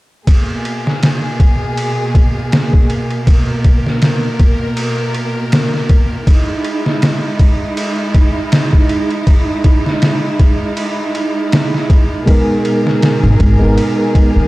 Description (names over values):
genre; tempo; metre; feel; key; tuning
trip hop; 80 BPM; 4/4; swing 56% on 16ths; G# minor; A4 = 440 Hz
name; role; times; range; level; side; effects
clear studio string section; sustained chords; 0.3-14.5 s; B2 to A#4; -18 LUFS; right 1 dB; none
trip hop sampler-style drum kit; drums; 0.3-14.4 s; kick drum, ride cymbal, snare drum; -13 LUFS; equal; overdrive
tine electric piano; accompaniment; 12.3-14.5 s; G#3 to A#4; -14 LUFS; right 1 dB; tremolo, vintage 12-bit sampler grit, tape echo
upright bass; bass; 13.2-14.5 s; G#1 to D#2; -11 LUFS; equal; none
room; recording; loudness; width
little or no reverb; dark, warm production; -11 LUFS; side -19 dB against mid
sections
0.3-14.5 A section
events
none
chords
0.3 G#madd9; 6.3 Emaj7; 12.3 G#madd9